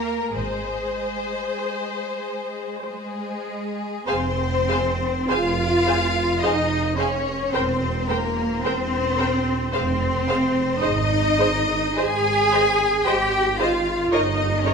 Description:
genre	classical, slow romantic movement for string orchestra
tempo	48-57 BPM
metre	3/4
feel	rubato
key	Ab major, F minor from 4.1 s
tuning	A4 = 437 Hz
part	rich studio violin section	melody	0.0-14.7 s	Ab4 to Ab5	-25 LUFS	left 5 dB	none
part	rich studio violin section	second line	0.0-14.7 s	Bb4 to Ab5	-30 LUFS	left 2 dB	none
part	rich studio viola section	accompaniment	0.0-14.7 s	Ab4 to Db5	-28 LUFS	right 2 dB	none
part	rich studio cello section	bass	0.0-14.7 s	Ab3 to Ab4	-24 LUFS	right 2 dB	none
part	warm studio double bass section	bass	0.0-14.7 s	E1 to Eb2	-27 LUFS	right 4 dB	none
room	wet recital hall reverb, RT60 1.6 s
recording	minimal, uncompressed stereo recording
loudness	-20 LUFS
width	side -5 dB against mid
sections	0.0-4.1 A section; 4.1-14.7 B section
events	none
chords	0.4 Ab; 4.1 Fm; 7.5 C7/E; 9.7 F5; 10.8 Ab; 14.1 Eb7/G

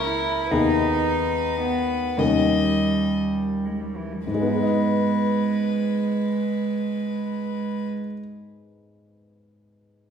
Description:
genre	classical, slow romantic movement for piano trio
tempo	26-42 BPM (dotted quarters)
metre	6/8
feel	rubato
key	G# minor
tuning	A4 = 440 Hz
part	rich violin	melody	0.0-7.9 s	A#4 to D#5	-29 LUFS	left 6 dB	none
part	warm cello	second line	0.0-7.8 s	E3 to E4	-24 LUFS	right 4 dB	none
part	warm baby grand piano	accompaniment	0.0-10.1 s	C#2 to D#5	-25 LUFS	left 4 dB	none
room	wet recital hall reverb, RT60 1.5 s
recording	heard from further back in the room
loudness	-21 LUFS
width	side -7 dB against mid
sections	0.0-4.3 A section; 4.3-8.5 B section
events	slowing down 0.0-4.3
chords	0.5 G#m/D#; 2.2 D#7; 4.3 G#m

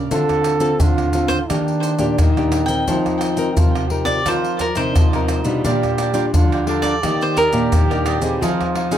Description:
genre	samba and choro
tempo	87 BPM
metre	4/4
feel	straight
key	unclear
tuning	A4 = 442 Hz
part	nylon-string guitar	accompaniment	0.0-9.0 s	A2 to Bb4	-23 LUFS	left 4 dB	none
part	nylon-string guitar	bass	0.0-9.0 s	Bb2 to F3	-23 LUFS	equal	none
part	breathy trombone	second line	0.1-9.0 s	D4 to A4	-23 LUFS	right 4 dB	none
part	maracas, surdo, pandeiro and tamborim	percussion	0.1-9.0 s	none	-20 LUFS	equal	none
part	cavaquinho	melody	1.3-8.0 s	Bb4 to G5	-23 LUFS	right 1 dB	tape echo
part	cavaquinho	accompaniment	5.6-9.0 s	D4 to G5	-27 LUFS	right 5 dB	none
room	light reverb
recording	close, detailed microphones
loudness	-15 LUFS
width	side -10 dB against mid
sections	0.0-9.0 A section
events	none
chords	0.1 Dm7; 1.5 Ebmaj7; 2.9 F7sus4; 5.7 Bb6; 7.0 Ebmaj7; 8.4 Fm7

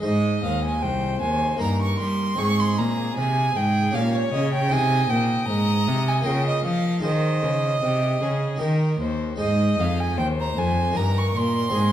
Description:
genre	classical, baroque-style sonata movement with continuo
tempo	77 BPM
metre	3/4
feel	straight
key	Ab major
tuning	A4 = 440 Hz
part	clear violin	melody	0.0-11.9 s	G4 to Eb5	-32 LUFS	left 6 dB	none
part	harpsichord	accompaniment	0.0-11.9 s	C2 to Eb5	-28 LUFS	left 1 dB	none
part	clear violin	second line	0.1-11.9 s	Db5 to Db6	-25 LUFS	right 3 dB	none
part	rich cello	bass	0.1-11.9 s	C2 to G3	-23 LUFS	equal	none
room	moderate recital hall reverb, RT60 1.4 s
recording	dark, warm production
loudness	-20 LUFS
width	side -11 dB against mid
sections	0.0-11.9 A section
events	none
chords	0.0 Ab; 1.6 Eb/G; 2.4 Ab; 3.9 Gdim/Bb; 4.7 Ab; 6.3 Bbm/Db; 7.0 Ab; 8.6 Eb; 9.4 Ab; 11.0 Eb/G

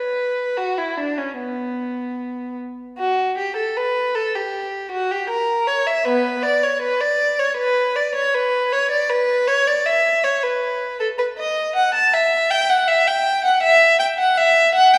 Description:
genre	classical, baroque-style suite movement for unaccompanied violin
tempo	79 BPM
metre	4/4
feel	rubato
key	B minor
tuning	A4 = 441 Hz
part	rich violin	solo	0.0-15.0 s	B3 to A5	-19 LUFS	equal	none
room	wet recital hall reverb, RT60 1.8 s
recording	heard from further back in the room, faint mains hum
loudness	-19 LUFS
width	mono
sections	0.0-3.0 A section; 3.0-15.0 B section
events	none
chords	none

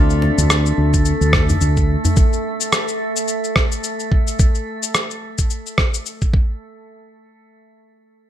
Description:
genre	organic downtempo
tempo	108 BPM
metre	4/4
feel	swing 57% on 16ths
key	D minor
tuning	A4 = 440 Hz
part	steel-string zither	arpeggios	0.0-2.4 s	C4 to D5	-26 LUFS	left 3 dB	ping-pong delay
part	mellow fretless electric bass	bass	0.0-2.0 s	D2	-16 LUFS	equal	tube saturation, sidechain pumping
part	drifting glass-harmonics texture	texture	0.0-4.4 s	A3 to A4	-24 LUFS	right 1 dB	chorus, built-in reverb
part	electronic shaker and rim click	drums	0.1-6.3 s	none	-20 LUFS	left 1 dB	none
part	djembe	percussion	0.2-2.1 s	none	-21 LUFS	equal	none
part	electronic kick drum	drums	0.9-6.5 s	none	-16 LUFS	equal	none
room	light reverb, digital ambience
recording	none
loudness	-15 LUFS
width	side -11 dB against mid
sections	0.0-6.6 A section; 6.6-8.3 B section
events	none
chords	0.0 Dm7; 2.2 N.C.

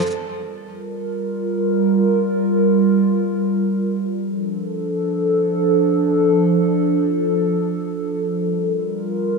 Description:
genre	folktronica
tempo	free time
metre	none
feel	none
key	G minor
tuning	A4 = 440 Hz
part	warbly tape-like pad	sustained chords	0.8-9.4 s	F3 to Bb4	-17 LUFS	right 1 dB	chorus, built-in reverb, phaser
room	moderate echo chamber reverb, RT60 2.2 s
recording	none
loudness	-17 LUFS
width	side -3 dB against mid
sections	0.0-9.4 A section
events	none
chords	0.0 Gm7; 4.2 F6; 8.4 Gm7

